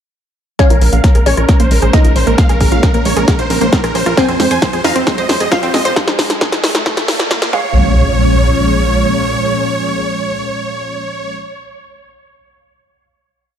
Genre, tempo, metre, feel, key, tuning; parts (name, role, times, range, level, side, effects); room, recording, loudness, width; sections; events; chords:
uplifting trance; 134 BPM; 4/4; straight; Bb minor; A4 = 440 Hz
supersaw chords; melody; 0.6-11.3 s; Bb4 to Ab5; -18 LUFS; right 2 dB; sidechain pumping, low-pass filter, dub echo
glassy wavetable pluck; second line; 0.6-11.3 s; C4 to F5; -19 LUFS; left 1 dB; chorus, dub echo
analog string pad; sustained chords; 0.6-11.3 s; Bb2 to Db4; -20 LUFS; equal; ensemble chorus, vintage 12-bit sampler grit, sidechain pumping
wide unison pluck; arpeggios; 0.6-7.9 s; Ab3 to C5; -20 LUFS; right 2 dB; sidechain pumping, tape echo
electronic kick drum; drums; 0.6-7.6 s; -13 LUFS; equal
punchy analog drum machine; drums; 0.6-7.5 s; hi-hat, rim click, snare drum; -17 LUFS; equal; overdrive
riser and impact; sound effects; 3.6-11.4 s; -21 LUFS; equal
tight sequencer bass; bass; 0.7-9.1 s; Bb1 to F2; -16 LUFS; equal; sidechain pumping
light reverb; dark, warm production, high-pass filter; -11 LUFS; side -9 dB against mid
0.6-7.8 build; 7.8-11.3 final hit
build-up 0.6-7.8; drum fill 0.6-7.8; filter sweep on supersaw synth 0.6-6.0; filter sweep on synth arpeggio sound 0.6-6.0; filter sweep 0.6-7.8; riser 3.6-7.8
0.6 Bbm7; 4.2 Fm; 6.0 N.C.; 7.5 Bbm7